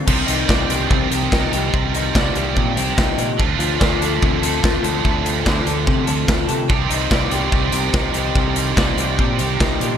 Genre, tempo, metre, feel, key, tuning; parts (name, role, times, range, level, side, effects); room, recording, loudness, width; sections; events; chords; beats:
indie rock; 145 BPM; 4/4; straight; C dorian; A4 = 439 Hz
electric guitar through a small old amp; riff; 0.0-10.0 s; C3 to D5; -23 LUFS; left 6 dB; lush chorus
high-gain distorted guitar; riff; 0.1-10.0 s; C3 to G4; -22 LUFS; right 11 dB; distortion, ensemble chorus, digital delay
growling fingered electric bass; bass; 0.1-10.0 s; C2 to C3; -24 LUFS; equal; overdrive
big rock drum kit; drums; 0.1-9.9 s; crash cymbal, hi-hat, kick drum, snare drum; -20 LUFS; equal; gated reverb
combo organ; sustained chords; 6.7-10.0 s; G4 to C6; -31 LUFS; right 4 dB
light reverb, small room ambience; bright 1980s-style digital production, lossy compression artefacts; -16 LUFS; side -8 dB against mid
0.1-10.0 A section
0.1 Cmadd9; 3.4 Dm7; 6.7 Cmadd9
| 0.07 0.48 0.90 1.31 | 1.73 2.14 2.56 2.97 | 3.39 3.80 4.21 4.63 | 5.04 5.46 5.87 6.29 | 6.70 7.11 7.53 7.94 | 8.36 8.77 9.19 9.60